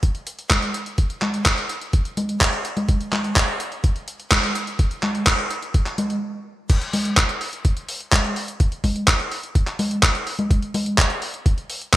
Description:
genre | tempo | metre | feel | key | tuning
italo disco | 126 BPM | 4/4 | straight | none | none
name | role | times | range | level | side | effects
dusty soul sampler-style drum kit | drums | 0.0-12.0 s | congas, crash cymbal, handclaps, hi-hat | -21 LUFS | equal | small room reverb, gated reverb
electronic kick drum | drums | 0.0-12.0 s | none | -18 LUFS | equal | small room reverb
room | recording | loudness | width
moderate plate reverb, RT60 1.8 s | bright 1980s-style digital production | -19 LUFS | side -15 dB against mid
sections
0.0-6.7 A section; 6.7-12.0 B section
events
stop 6.2-6.7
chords
none

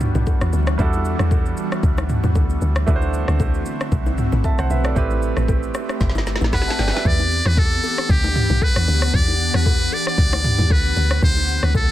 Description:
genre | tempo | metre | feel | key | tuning
amapiano | 115 BPM | 4/4 | swing 55% on 16ths | E minor | A4 = 440 Hz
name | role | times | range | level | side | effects
clear concert grand piano | accompaniment | 0.0-7.2 s | G3 to B5 | -27 LUFS | right 6 dB | none
glassy FM pad | sustained chords | 0.0-11.9 s | D3 to F#5 | -28 LUFS | left 2 dB | ensemble chorus, built-in reverb, tremolo, sidechain pumping
woody log drum bass | bass | 0.0-11.9 s | G1 to E2 | -20 LUFS | equal | none
deep house drum kit | drums | 0.0-11.9 s | hi-hat, kick drum, rim click, shaker, snare drum, toms | -21 LUFS | equal | soft clipping on snare
bongos and congas | percussion | 0.2-11.9 s | none | -30 LUFS | left 5 dB | none
trumpet with metal mute | melody | 6.5-11.9 s | G4 to D5 | -21 LUFS | equal | tape echo
room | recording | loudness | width
little or no reverb | dense, heavily limited modern master | -16 LUFS | side -13 dB against mid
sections
0.0-7.1 A section; 7.1-11.9 B section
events
drum fill 6.0-7.1; drop 7.1-11.9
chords
0.0 Em9; 2.9 D9; 5.0 Am9; 7.1 Em9; 11.2 D9

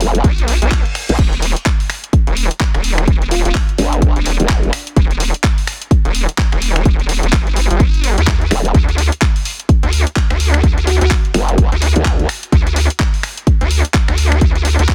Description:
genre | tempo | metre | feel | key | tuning
bass house | 127 BPM | 4/4 | swing 60% on 16ths | unclear | A4 = 440 Hz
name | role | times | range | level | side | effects
growl bass | bass | 0.0-4.7, 8.5-12.3 s | Eb1 to D2 | -17 LUFS | equal | chorus, overdrive, sidechain pumping
garage drum kit | drums | 0.0-14.9 s | crash cymbal, finger snaps, handclaps, hi-hat | -23 LUFS | equal | soft clipping on snare
vowel-sweep wobble bass | bass | 0.2-14.9 s | Eb1 to Eb2 | -17 LUFS | equal | chorus, overdrive, sidechain pumping
electronic kick drum | drums | 0.2-14.9 s | none | -16 LUFS | equal | none
reverse cymbal | sound effects | 0.5-1.2 s | none | -31 LUFS | equal | none
bell-like FM electric piano | melody | 3.3-4.3, 10.9-11.1 s | D4 to F#4 | -26 LUFS | equal | chorus, tremolo, delay
room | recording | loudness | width
little or no reverb | dense, heavily limited modern master | -15 LUFS | mono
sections
0.0-14.9 A section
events
reverse cymbal 0.5-1.2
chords
0.0 Bb5; 1.2 Eb; 8.7 N.C.

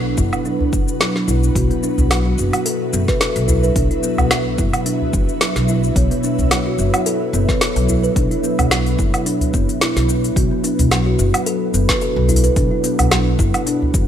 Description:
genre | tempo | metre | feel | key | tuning
organic downtempo | 109 BPM | 4/4 | swing 55% on 16ths | B minor | A4 = 440 Hz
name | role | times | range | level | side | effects
ethereal airy pad | sustained chords | 0.0-14.1 s | B2 to F#5 | -24 LUFS | equal | ensemble chorus, built-in reverb, sidechain pumping
kalimba | arpeggios | 0.0-14.1 s | F#3 to B4 | -21 LUFS | equal | tape echo
upright bass | bass | 0.0-14.0 s | F#1 to B1 | -19 LUFS | equal | none
quartz singing bowl | texture | 0.0-14.1 s | F#3 to C#5 | -30 LUFS | equal | none
afro-pop drum kit | drums | 0.2-14.1 s | hi-hat, shaker, snare drum, woodblock | -21 LUFS | equal | studio reverb
electronic kick drum | drums | 0.2-14.1 s | none | -20 LUFS | equal | studio reverb
udu | percussion | 0.6-13.9 s | none | -21 LUFS | equal | none
room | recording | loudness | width
light reverb, small room ambience | none | -15 LUFS | side -9 dB against mid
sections
0.0-10.4 A section; 10.4-14.1 B section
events
none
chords
0.0 Bm

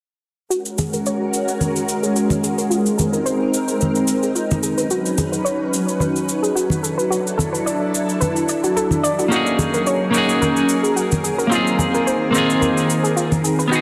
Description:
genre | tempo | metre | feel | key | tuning
sunset chillout | 109 BPM | 4/4 | swing 54% on 16ths | unclear | A4 = 443 Hz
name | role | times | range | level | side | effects
soft string machine | sustained chords | 0.6-13.8 s | D#3 to B4 | -23 LUFS | equal | phaser, ensemble chorus
soft round pluck | arpeggios | 0.5-13.8 s | E#4 to D5 | -26 LUFS | equal | chorus, delay
cabasa | drums | 0.5-13.8 s | none | -29 LUFS | equal | overdrive
congas | percussion | 0.8-13.4 s | none | -26 LUFS | equal | none
semi-hollow electric guitar | accompaniment | 9.3-13.8 s | A#3 to G#4 | -21 LUFS | equal | vintage 12-bit sampler grit, delay
room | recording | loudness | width
wet lush hall reverb, RT60 1.8 s, digital ambience | dense, heavily limited modern master | -19 LUFS | mono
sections
0.5-13.8 A section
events
filter sweep on synth pluck 0.5-13.8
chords
0.5 G#9sus4; 2.7 A#9sus4; 4.6 C#9sus4; 6.8 E9sus4; 9.3 G#9sus4; 11.5 A#9sus4

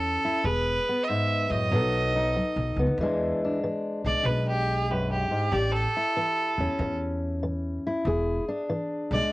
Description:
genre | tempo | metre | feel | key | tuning
acoustic country blues, solo or duo | 95 BPM | 4/4 | swing 67% on 8ths | E mixolydian | A4 = 440 Hz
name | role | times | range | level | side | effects
bright fiddle | melody | 0.0-9.3 s | G4 to E5 | -27 LUFS | right 2 dB | cassette tape
fingerpicked steel-string acoustic guitar | accompaniment | 0.0-9.3 s | E2 to A4 | -28 LUFS | left 1 dB | cassette tape
upright bass | bass | 0.0-9.2 s | E1 to F#2 | -29 LUFS | equal | transformer saturation
room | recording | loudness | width
light reverb | home recording on cassette, nothing above 10.5 kHz | -24 LUFS | side -18 dB against mid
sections
0.0-3.0 A section; 3.0-9.3 B section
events
fiddle solo 3.0-9.3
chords
0.4 E; 1.7 B7; 3.0 E7; 5.5 A7; 8.1 E7

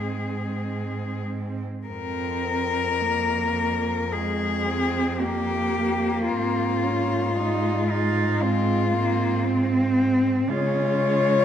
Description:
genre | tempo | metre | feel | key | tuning
classical, lyrical piece for cello ensemble | 47-58 BPM | 4/4 | rubato | F minor | A4 = 440 Hz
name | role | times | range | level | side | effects
rich cello | melody | 0.0-11.4 s | Eb4 to Db5 | -25 LUFS | left 5 dB | none
rich cello | second line | 0.0-11.4 s | Bb3 to F4 | -28 LUFS | right 7 dB | none
rich cello | accompaniment | 0.0-11.4 s | Ab3 to C4 | -27 LUFS | left 1 dB | none
clear cello | bass | 0.0-11.4 s | F2 to Db3 | -28 LUFS | right 1 dB | none
room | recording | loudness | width
moderate concert hall reverb, RT60 2.1 s | dark, warm production | -22 LUFS | side -9 dB against mid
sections
0.0-1.9 A section; 1.9-11.4 B section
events
none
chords
0.0 Ab; 1.9 Fm; 6.3 Fm/Ab; 10.5 Db

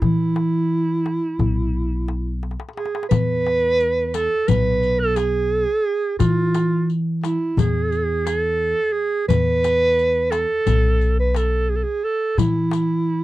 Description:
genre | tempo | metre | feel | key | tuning
Turkish makam ensemble | 175 BPM (eighths) | 9/8 | straight | E makam hicaz | A4 = 440 Hz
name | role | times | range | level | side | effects
breathy clarinet | melody | 0.0-13.2 s | E4 to B4 | -20 LUFS | right 2 dB | none
upright bass | bass | 0.0-13.2 s | B1 to E3 | -22 LUFS | equal | none
darbuka | percussion | 0.0-13.2 s | none | -24 LUFS | left 4 dB | none
riq | percussion | 3.1-12.9 s | none | -29 LUFS | left 13 dB | none
room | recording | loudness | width
little or no reverb | dry, close 1970s-style studio recording | -18 LUFS | side -16 dB against mid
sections
0.0-3.1 A section; 3.1-13.2 B section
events
drum fill 2.4-3.1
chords
none

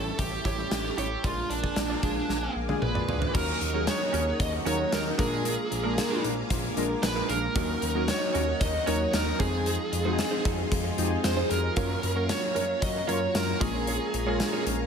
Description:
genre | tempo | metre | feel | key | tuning
1980s-style pop | 114 BPM | 4/4 | straight | Eb minor from 3.3 s | A4 = 440 Hz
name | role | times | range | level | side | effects
high-gain lead guitar | melody | 0.0-14.6 s | D4 to Eb5 | -31 LUFS | right 2 dB | distortion, digital delay
warm analog keys | accompaniment | 0.0-14.9 s | F3 to Bb4 | -32 LUFS | left 2 dB | chorus
string machine, full ensemble | sustained chords | 0.0-14.9 s | Bb3 to D6 | -38 LUFS | left 1 dB | ensemble chorus
direct-recorded clean electric guitar | riff | 0.0-14.8 s | Db4 to D5 | -37 LUFS | right 7 dB | lush chorus
smooth gliding synth bass | bass | 0.0-14.9 s | A1 to Gb2 | -32 LUFS | equal | none
gated 80s drum kit | drums | 0.2-14.8 s | crash cymbal, hi-hat, kick drum, snare drum, tambourine, toms | -30 LUFS | left 1 dB | none
cranked stack guitar | accompaniment | 3.3-14.9 s | Bb2 to Gb4 | -40 LUFS | equal | none
analog synth brass | stabs | 4.7-5.1, 8.9-9.4, 13.1-13.6 s | Gb3 to Bb4 | -36 LUFS | right 1 dB | chorus, phaser
room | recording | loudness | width
light reverb, studio reverb | none | -25 LUFS | side -6 dB against mid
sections
0.0-3.3 A section; 3.3-14.9 B section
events
drum fill 2.3-3.3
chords
0.0 A7; 1.2 Bb7; 3.3 Ebm7; 5.2 Bb7; 7.6 Ebm7; 9.4 Fm7; 11.8 Gbmaj7; 13.6 Bbm7

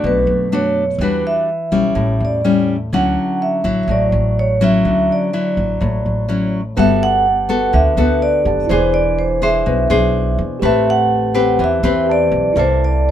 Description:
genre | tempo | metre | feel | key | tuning
bossa nova | 125 BPM | 4/4 | straight | D major, G major from 6.8 s | A4 = 441 Hz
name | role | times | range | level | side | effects
vibraphone with medium mallets | melody | 0.0-13.1 s | B4 to F#5 | -18 LUFS | right 2 dB | none
nylon-string guitar | accompaniment | 0.0-13.1 s | A2 to C5 | -17 LUFS | left 3 dB | none
upright bass | bass | 0.0-13.1 s | E1 to F#2 | -20 LUFS | right 1 dB | none
tine electric piano | accompaniment | 6.8-13.1 s | E4 to A5 | -24 LUFS | right 8 dB | none
room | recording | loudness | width
light reverb | minimal, uncompressed stereo recording | -13 LUFS | side -10 dB against mid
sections
0.0-6.8 A section; 6.8-13.1 B section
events
none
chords
0.0 Bm7; 1.0 Em9; 2.0 A7; 2.9 Dmaj9; 6.8 Gmaj9; 8.7 E7b13; 10.6 Am9; 12.6 C13

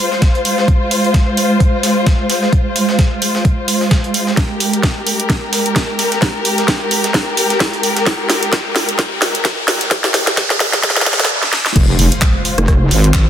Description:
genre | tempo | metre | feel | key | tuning
bass house | 130 BPM | 4/4 | swing 57% on 16ths | F minor | A4 = 441 Hz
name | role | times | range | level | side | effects
dark symphonic string section | sustained chords | 0.0-13.3 s | Ab3 to C5 | -17 LUFS | equal | sidechain pumping
breakbeat sampler-style drum kit | drums | 0.1-13.3 s | hi-hat, snare drum | -25 LUFS | right 1 dB | high-pass filter on hats, high-pass filter on snare
electronic kick drum | drums | 0.2-13.2 s | none | -14 LUFS | equal | none
garage drum kit | drums | 0.5-13.2 s | crash cymbal, handclaps, hi-hat, rim click, snare drum | -16 LUFS | equal | none
riser and impact | sound effects | 6.6-13.3 s | none | -23 LUFS | equal | none
wobble bass | bass | 11.8-13.3 s | F1 to Ab1 | -12 LUFS | equal | chorus, sidechain pumping
room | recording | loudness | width
moderate lush hall reverb, RT60 1.6 s | dense, heavily limited modern master, high-pass filter | -12 LUFS | side -9 dB against mid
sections
0.0-11.8 A section; 11.8-13.3 B section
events
build-up 0.0-11.8; filter sweep 0.0-11.8; drum fill 4.4-11.3, 11.4-11.8; riser 6.6-11.3; stop 11.3-11.8; drop 11.8-13.3; impact 11.8-13.3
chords
0.0 Fm

